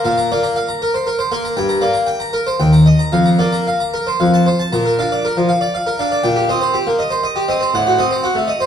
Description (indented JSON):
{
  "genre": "classical, baroque-style suite movement for harpsichord",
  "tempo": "119 BPM",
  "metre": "3/4",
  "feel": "rubato",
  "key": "Bb major",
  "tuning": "A4 = 440 Hz",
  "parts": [
    { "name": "harpsichord", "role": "solo", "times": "0.0-8.7 s", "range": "Eb2 to Bb5", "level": "-14 LUFS", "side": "equal", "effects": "none" }
  ],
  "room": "wet recital hall reverb, RT60 1.8 s",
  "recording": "dark, warm production",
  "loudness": "-14 LUFS",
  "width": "side -8 dB against mid",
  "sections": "0.0-4.7 A section; 4.7-8.7 A section",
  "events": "none",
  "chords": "0.1 Bb; 1.6 Gm; 2.6 Eb; 3.1 Bb/F; 4.2 F; 4.7 Bb; 6.2 Cm7/Bb; 7.7 Adim7",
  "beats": "| 0.05 0.56 1.06 | 1.57 2.07 2.59 | 3.12 3.67 4.20 | 4.73 5.24 5.74 | 6.25 6.75 7.25 | 7.75 8.24"
}